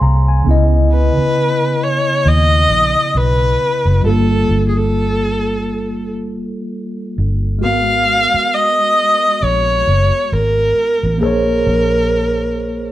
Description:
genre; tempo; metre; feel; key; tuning
R&B, neo-soul; 67 BPM; 4/4; swing 58% on 16ths; unclear; A4 = 440 Hz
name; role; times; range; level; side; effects
mellow tine electric piano; accompaniment; 0.0-12.9 s; Db3 to C6; -19 LUFS; equal; medium stereo tremolo
vintage muted fingered electric bass; bass; 0.0-12.9 s; Gb1 to Eb2; -16 LUFS; equal; none
rich viola; melody; 0.9-12.9 s; Ab4 to F5; -15 LUFS; equal; none
room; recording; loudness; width
moderate stone room reverb, RT60 0.9 s; band playing live in one room; -12 LUFS; side -14 dB against mid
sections
0.0-12.9 A section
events
none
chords
0.5 Dbm9; 4.0 Gm9; 7.6 Abm9; 11.2 Bbm9

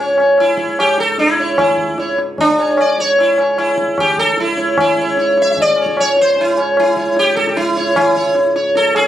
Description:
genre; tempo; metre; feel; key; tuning
indian classical, Hindustani; 150 BPM; 4/4; straight; C# raga todi; A4 = 444 Hz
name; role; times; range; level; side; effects
sitar; melody; 0.0-9.1 s; C#4 to E5; -13 LUFS; equal; none
pedal harmonium; drone; 0.0-9.1 s; C#2 to G#2; -26 LUFS; left 1 dB; none
tabla; percussion; 0.2-9.1 s; none; -19 LUFS; left 2 dB; none
room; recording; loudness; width
light reverb; recorded on a phone in the room, studio reverb; -12 LUFS; side -11 dB against mid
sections
0.0-9.1 A section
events
none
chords
none

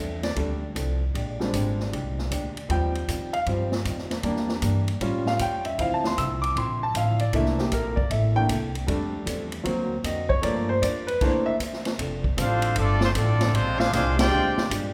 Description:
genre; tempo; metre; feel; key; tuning
jazz, big band swing; 155 BPM; 4/4; swing 65% on 8ths; F major; A4 = 439 Hz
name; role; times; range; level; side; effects
archtop guitar, miked and amplified; accompaniment; 0.0-14.9 s; A2 to A#4; -38 LUFS; equal; none
clear baby grand piano; accompaniment; 0.0-14.5 s; E3 to E6; -29 LUFS; equal; none
upright bass; bass; 0.0-14.9 s; F1 to A2; -30 LUFS; equal; none
swinging big-band drum kit; drums; 0.2-14.8 s; crash cymbal, hi-hat, kick drum, ride cymbal, snare drum; -32 LUFS; equal; none
clear trumpet section; melody; 12.4-14.7 s; Ab3 to G5; -28 LUFS; equal; none
bright trombone section; second line; 12.4-14.7 s; D3 to G4; -33 LUFS; equal; none
room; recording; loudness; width
wet recital hall reverb, RT60 1.3 s; recorded in a church or concert hall; -25 LUFS; mono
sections
0.0-12.0 A section; 12.0-14.9 B section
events
grand piano solo 0.0-12.0; band accent 14.1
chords
0.0 F6; 1.1 Bb13; 2.7 Eb69; 4.2 Em7b5; 5.0 Aaug7; 5.8 Dm9; 7.3 C13; 8.9 F6; 9.7 D7alt; 10.4 Gm7; 11.2 Bbmaj9#11/E; 12.0 F6; 13.5 Bb13

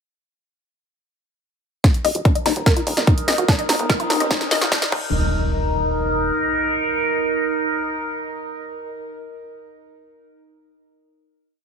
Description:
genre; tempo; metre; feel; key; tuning
psychedelic trance; 146 BPM; 4/4; straight; unclear; A4 = 440 Hz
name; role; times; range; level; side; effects
overtone-sweeping drone; sustained chords; 2.5-9.0 s; Eb4 to Bb4; -23 LUFS; right 1 dB; chorus, built-in reverb, sidechain pumping
woody wave-folded pluck; riff; 1.8-5.3 s; D4 to Eb5; -23 LUFS; moving between left 6 dB and right 3 dB; chorus, auto-pan, sidechain pumping, digital delay
big-room dance drum kit; drums; 1.8-5.0 s; crash cymbal, hi-hat, snare drum; -23 LUFS; equal; small room ambience
electronic kick drum; drums; 1.8-5.0 s; none; -17 LUFS; equal; small room ambience
riser and impact; sound effects; 3.3-9.1 s; none; -30 LUFS; right 1 dB; none
plucky analog bass; bass; 2.0-6.3 s; Eb1 to Bb1; -25 LUFS; equal; tube saturation, high-pass filter
room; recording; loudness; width
light reverb, digital ambience; high-pass filter; -17 LUFS; side -6 dB against mid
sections
1.8-5.1 build; 5.1-8.4 final hit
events
build-up 1.8-5.1; drum fill 1.8-5.1; filter sweep on synth arpeggio sound 1.8-5.1; filter sweep on synth drone 1.8-5.1; filter sweep 1.8-5.1; riser 3.3-5.1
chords
1.8 Eb5

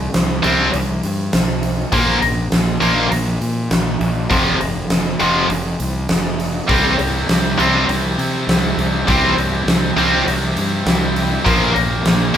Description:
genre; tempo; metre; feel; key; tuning
hard rock; 101 BPM; 4/4; straight; unclear; A4 = 440 Hz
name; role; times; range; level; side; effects
fuzz fingered electric bass; bass; 0.0-12.3 s; F1 to C3; -21 LUFS; equal; overdrive
huge arena drum kit; drums; 0.1-12.4 s; hi-hat, kick drum, snare drum; -19 LUFS; right 1 dB; none
heavy high-gain guitar; riff; 0.4-12.4 s; F2 to C4; -16 LUFS; left 1 dB; distortion
heavy high-gain guitar; riff; 6.7-12.4 s; Bb2 to E4; -21 LUFS; equal; distortion
room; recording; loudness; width
light reverb; band playing live in one room; -14 LUFS; side -9 dB against mid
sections
0.0-12.4 A section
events
none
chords
0.0 C5; 1.9 Bb5; 4.3 F5; 6.7 C; 11.5 Bbsus2

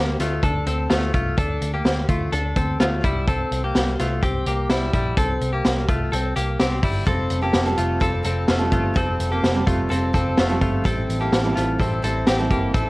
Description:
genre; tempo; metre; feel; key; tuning
jangly indie pop; 127 BPM; 4/4; straight; D minor; A4 = 438 Hz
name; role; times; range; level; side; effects
direct-recorded clean electric guitar; arpeggios; 0.0-12.9 s; G3 to A4; -24 LUFS; left 2 dB; lush chorus
vintage muted picked electric bass; bass; 0.0-12.9 s; F1 to D2; -24 LUFS; equal; none
vintage drum kit; drums; 0.2-12.9 s; hi-hat, kick drum, snare drum; -22 LUFS; equal; none
picked steel-string acoustic guitar; accompaniment; 7.1-12.9 s; A2 to A4; -25 LUFS; right 2 dB; none
room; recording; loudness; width
light reverb, small room ambience; worn, warbling old tape, cassette tape, warbly pitch drift; -19 LUFS; side -22 dB against mid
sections
0.0-12.9 A section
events
none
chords
0.0 Dm; 3.0 C; 7.1 Fadd9; 10.8 Am7

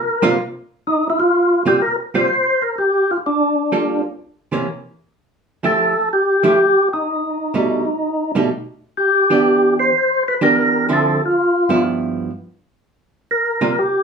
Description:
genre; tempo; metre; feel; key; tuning
jazz; 126 BPM; 4/4; swing 68% on 8ths; C mixolydian; A4 = 440 Hz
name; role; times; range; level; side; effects
percussive tonewheel organ; melody; 0.0-14.0 s; D4 to C5; -15 LUFS; equal; slow rotary speaker, overdrive, chorus vibrato
archtop guitar, miked and amplified; accompaniment; 0.2-13.8 s; G2 to A4; -18 LUFS; right 3 dB; none
room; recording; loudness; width
wet studio reverb, RT60 0.6 s; studio ambience; -15 LUFS; side -5 dB against mid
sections
0.0-1.3 A section; 1.3-14.0 B section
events
tonewheel organ solo 0.0-1.3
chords
0.0 C7sus4; 3.2 Gm9; 4.2 C7b9; 5.2 Fmaj9; 7.1 Baug7; 9.0 Em7; 10.9 Dm9; 11.8 G6; 12.8 C7sus4

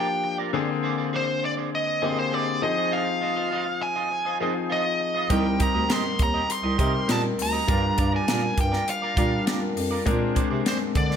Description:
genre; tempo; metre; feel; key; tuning
polished 1980s jazz-funk pop; 101 BPM; 4/4; straight; C minor; A4 = 442 Hz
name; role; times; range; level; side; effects
nasal lead guitar with a parked wah; melody; 0.0-11.2 s; C5 to C6; -27 LUFS; equal; overdrive
clear grand piano; accompaniment; 0.0-11.2 s; D3 to Bb4; -27 LUFS; left 4 dB; wide subtle chorus
electric guitar at the edge of break-up; riff; 0.0-11.2 s; F4 to Eb5; -32 LUFS; right 7 dB; analog chorus
dark bass clarinet; bass; 5.3-11.2 s; C2 to D3; -27 LUFS; right 1 dB; none
crisp fusion drum kit; drums; 5.3-11.2 s; hi-hat, kick drum, snare drum; -26 LUFS; right 1 dB; gated reverb
room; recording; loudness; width
light reverb, small room ambience; bright 1980s-style digital production; -22 LUFS; side -8 dB against mid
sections
0.0-11.2 A section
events
none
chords
0.0 Gm7; 0.5 Bb9; 2.6 Ab6; 5.3 Cm7; 7.7 Gm7; 10.1 Bb9

